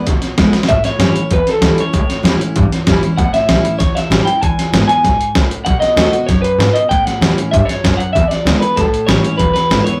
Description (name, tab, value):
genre	rockabilly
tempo	193 BPM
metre	4/4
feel	straight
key	unclear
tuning	A4 = 440 Hz
part	electric guitar through a small old amp	melody	0.0-10.0 s	A4 to G#5	-18 LUFS	equal	none
part	picked steel-string acoustic guitar	accompaniment	0.0-10.0 s	E2 to F#4	-20 LUFS	equal	none
part	upright bass	bass	0.1-9.9 s	E1 to A2	-20 LUFS	equal	none
part	dusty soul sampler-style drum kit	drums	0.1-9.9 s	hi-hat, kick drum, snare drum	-19 LUFS	equal	none
room	moderate small room reverb, RT60 0.5 s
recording	rough rehearsal-room recording, warm saturation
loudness	-14 LUFS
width	mono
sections	0.0-10.0 A section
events	drum fill 0.5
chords	0.0 E7; 0.7 A7; 4.4 E7; 5.7 B; 6.9 A7; 8.2 E7; 8.8 A7; 9.4 E7